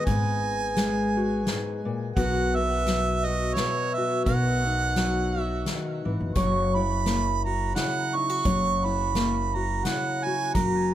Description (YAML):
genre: acoustic folk duo or small band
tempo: 86 BPM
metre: 3/4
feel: swing 56% on 8ths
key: unclear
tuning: A4 = 440 Hz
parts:
  - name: clear harmonica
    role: second line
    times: 0.0-10.9 s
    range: C#5 to C#6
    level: -28 LUFS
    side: right 5 dB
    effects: tape echo
  - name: fingerpicked steel-string acoustic guitar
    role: accompaniment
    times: 0.0-10.9 s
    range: G#2 to C#5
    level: -27 LUFS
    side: left 3 dB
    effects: none
  - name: upright bass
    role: bass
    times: 0.1-10.9 s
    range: F#1 to B1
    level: -30 LUFS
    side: equal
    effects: none
  - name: soft-mallet drum kit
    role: drums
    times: 0.1-10.7 s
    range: hi-hat, kick drum, snare drum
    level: -30 LUFS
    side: equal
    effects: none
room: little or no reverb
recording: none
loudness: -23 LUFS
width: side -12 dB against mid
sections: 0.0-10.9 A section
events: harmonica solo 0.0-10.9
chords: 0.0 G#m7; 2.2 Bmaj7; 6.4 F#7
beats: | 0.07 0.77 1.47 | 2.17 2.87 3.57 | 4.27 4.97 5.66 | 6.36 7.06 7.76 | 8.46 9.16 9.85 | 10.55